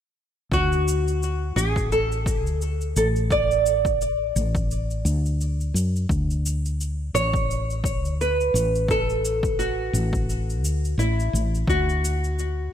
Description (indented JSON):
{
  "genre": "sunset chillout",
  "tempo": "86 BPM",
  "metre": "4/4",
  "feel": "swing 56% on 16ths",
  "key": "unclear",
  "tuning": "A4 = 441 Hz",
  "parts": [
    { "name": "nylon-string guitar", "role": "melody", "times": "0.5-12.7 s", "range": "E4 to D5", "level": "-24 LUFS", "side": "right 1 dB", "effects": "wide subtle chorus, ping-pong delay" },
    { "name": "woody fretless electric bass", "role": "bass", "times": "0.5-12.7 s", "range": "A1 to F#2", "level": "-24 LUFS", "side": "equal", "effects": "tube saturation" },
    { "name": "electronic kick drum", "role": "drums", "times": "0.5-11.8 s", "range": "none", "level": "-27 LUFS", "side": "equal", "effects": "overdrive" },
    { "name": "shaker", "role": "drums", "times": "0.5-12.5 s", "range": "none", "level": "-35 LUFS", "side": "equal", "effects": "overdrive" }
  ],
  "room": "light reverb",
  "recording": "bright 1980s-style digital production",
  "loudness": "-21 LUFS",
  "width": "side -10 dB against mid",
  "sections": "0.5-12.7 A section",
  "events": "none",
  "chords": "0.5 D5; 6.1 Bm7 (rootless); 11.7 D"
}